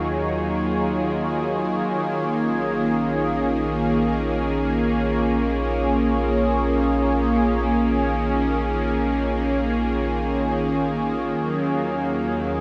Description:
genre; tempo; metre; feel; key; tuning
ambient; free time; none; none; unclear; A4 = 440 Hz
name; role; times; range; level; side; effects
warm analog pad; sustained chords; 0.0-12.6 s; Gb3 to Db5; -24 LUFS; equal; chorus
round analog bass; bass; 0.0-12.6 s; Bb1 to Eb2; -32 LUFS; equal; none
bowed-like drone; drone; 0.0-12.6 s; Eb3 to Bb3; -30 LUFS; equal; built-in reverb
room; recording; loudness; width
wet cathedral reverb, RT60 5.3 s; in a vast, echoing space, nothing above 10.5 kHz; -22 LUFS; mono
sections
0.0-12.6 A section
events
fade-in on analog synth bass 0.0-12.6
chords
0.0 Ebm11; 1.9 Bbm7; 11.4 Ebm11

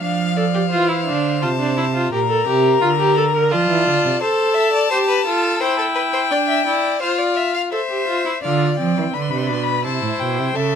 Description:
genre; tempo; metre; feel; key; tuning
classical, baroque-style fugue for string quartet; 86 BPM; 3/4; straight; D minor; A4 = 440 Hz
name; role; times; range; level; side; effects
rich violin; melody; 0.0-10.8 s; E5 to C6; -22 LUFS; left 7 dB; none
rich violin; second line; 0.0-10.8 s; A4 to F5; -23 LUFS; left 4 dB; none
rich viola; accompaniment; 0.0-10.8 s; C4 to Bb4; -20 LUFS; right 1 dB; none
rich cello; bass; 0.0-4.1, 8.4-10.8 s; A2 to F3; -21 LUFS; right 6 dB; none
room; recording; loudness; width
light reverb; none; -16 LUFS; side -7 dB against mid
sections
0.0-8.4 A section; 8.4-10.8 B section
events
none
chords
0.0 Dm/F; 1.4 F/C; 2.1 Gm/Bb; 3.5 Dm; 4.2 Am; 5.6 C/E; 6.3 Dm; 7.7 Am (rootless); 8.4 G7/D; 9.8 C

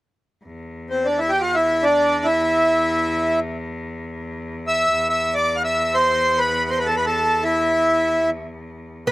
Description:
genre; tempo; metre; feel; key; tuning
arabic; free time; none; none; E maqam bayati; A4 = 437 Hz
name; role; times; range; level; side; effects
bright cello; drone; 0.4-9.1 s; E2; -30 LUFS; left 1 dB; none
accordion; melody; 0.9-9.1 s; C4 to F#5-50c; -17 LUFS; equal; slapback echo
oud; second line; 9.1 s; B4; -18 LUFS; right 2 dB; none
room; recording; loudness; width
little or no reverb; recorded outdoors, with no room sound; -17 LUFS; side -18 dB against mid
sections
0.5-9.1 A section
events
none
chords
none

